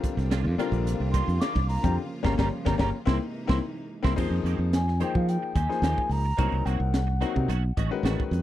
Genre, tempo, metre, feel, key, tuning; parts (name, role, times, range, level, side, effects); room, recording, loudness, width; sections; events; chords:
electric jazz fusion; 109 BPM; 4/4; straight; F minor from 4.2 s; A4 = 440 Hz
bright grand piano; accompaniment; 0.0-8.4 s; D3 to F#5; -31 LUFS; left 8 dB
bright studio string section; sustained chords; 0.0-4.2 s; C3 to F4; -37 LUFS; right 2 dB
clean electric guitar; stabs; 0.0-8.4 s; Eb3 to G4; -38 LUFS; right 16 dB; ensemble chorus
modern bright fingered electric bass; bass; 0.0-8.4 s; G1 to F3; -26 LUFS; right 1 dB
crisp fusion drum kit; drums; 0.0-8.4 s; crash cymbal, hi-hat, kick drum, snare drum; -29 LUFS; equal
mellow baroque flute; melody; 1.1-7.8 s; F5 to D6; -32 LUFS; equal; slapback echo
little or no reverb; -24 LUFS; side -13 dB against mid
0.0-4.2 A section; 4.2-8.4 B section
flute solo 0.0-4.2; band accent 2.0-4.2; drum fill 3.6-4.2; grand piano fill 7.5-8.4
0.0 Cm11; 2.0 Gm7b5; 3.1 C7alt; 4.2 Fm9; 6.4 Cm7b5; 7.5 B9